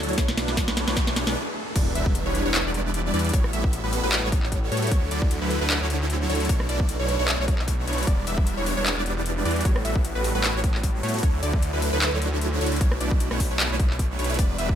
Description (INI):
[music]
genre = future bass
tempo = 152 BPM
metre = 4/4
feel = swing 54% on 16ths, half-time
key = unclear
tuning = A4 = 440 Hz
[part]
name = shimmering ambient pad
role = sustained chords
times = 0.0-1.4 s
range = D3 to C#5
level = -38 LUFS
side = right 1 dB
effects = none
[part]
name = supersaw chords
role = riff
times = 0.0-14.8 s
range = F#3 to E5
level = -28 LUFS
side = right 1 dB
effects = phaser, sidechain pumping, dub echo
[part]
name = wide detuned saw bass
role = bass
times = 0.0-14.8 s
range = E1 to A2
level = -27 LUFS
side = equal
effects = chorus, tube saturation, sidechain pumping
[part]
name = trap drum kit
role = drums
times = 0.0-14.7 s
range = crash cymbal, handclaps, hi-hat, rim click, snare drum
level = -28 LUFS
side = left 1 dB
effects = overdrive
[part]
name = riser, noise sweep and impact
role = sound effects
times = 0.0-3.3 s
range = none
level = -33 LUFS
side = equal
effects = none
[part]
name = electronic kick drum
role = drums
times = 0.2-14.8 s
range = none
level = -23 LUFS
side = equal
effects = overdrive
[part]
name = wide unison pluck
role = arpeggios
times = 1.8-14.8 s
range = B4 to E5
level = -33 LUFS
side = equal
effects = vintage 12-bit sampler grit, sidechain pumping
[sound]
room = little or no reverb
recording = none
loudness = -21 LUFS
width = side -10 dB against mid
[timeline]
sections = 0.0-1.8 A section; 1.8-14.8 B section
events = build-up 0.0-1.8; drum fill 0.0-1.4; riser 0.0-1.8; filter sweep on ambient pad 0.0-1.8; noise sweep 0.2-1.8; stop 1.4-1.8; drop 1.8-14.8; impact 1.8-3.3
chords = 0.2 Bm11; 1.8 Em7; 3.3 A13; 4.9 Dmaj9; 6.5 Bm11; 8.1 Em7; 9.7 A13; 11.2 Dmaj9; 12.8 Bm11